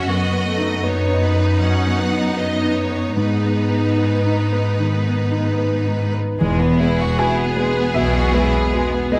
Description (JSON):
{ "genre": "cinematic, emotional film score for orchestra", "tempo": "73-80 BPM", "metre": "4/4", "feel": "rubato", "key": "E major", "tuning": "A4 = 440 Hz", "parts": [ { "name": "clear symphonic violin section", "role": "melody", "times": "0.0-9.2 s", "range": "G#4 to F#5", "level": "-29 LUFS", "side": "equal", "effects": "none" }, { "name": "clear symphonic violin section", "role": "second line", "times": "0.0-9.2 s", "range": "G#3 to F#4", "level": "-29 LUFS", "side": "equal", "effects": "none" }, { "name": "rich symphonic viola section", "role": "accompaniment", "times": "0.0-9.2 s", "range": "A3 to C#4", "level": "-29 LUFS", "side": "equal", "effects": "none" }, { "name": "warm baby grand piano", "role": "accompaniment", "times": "0.0-9.2 s", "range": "E2 to G#5", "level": "-25 LUFS", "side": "equal", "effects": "none" }, { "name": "concert harp", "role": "arpeggios", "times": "0.0-9.2 s", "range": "E2 to C#5", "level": "-28 LUFS", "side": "equal", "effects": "none" }, { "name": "rich symphonic cello section", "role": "bass", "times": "0.0-8.6 s", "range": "E2 to B2", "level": "-23 LUFS", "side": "equal", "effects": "none" }, { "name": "clear symphonic double bass section", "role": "bass", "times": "6.4-8.6 s", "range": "E1 to B1", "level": "-25 LUFS", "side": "equal", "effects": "none" } ], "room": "moderate scoring stage reverb, RT60 1.6 s", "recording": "none", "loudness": "-19 LUFS", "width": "mono", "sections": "0.0-6.4 A section; 6.4-9.2 B section", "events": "none", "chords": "0.1 B/F#; 3.2 G#m; 6.4 Eadd9", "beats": "| 0.10 0.85 1.61 2.38 | 3.17 3.99 4.80 5.59 | 6.41 7.18 7.95 8.73" }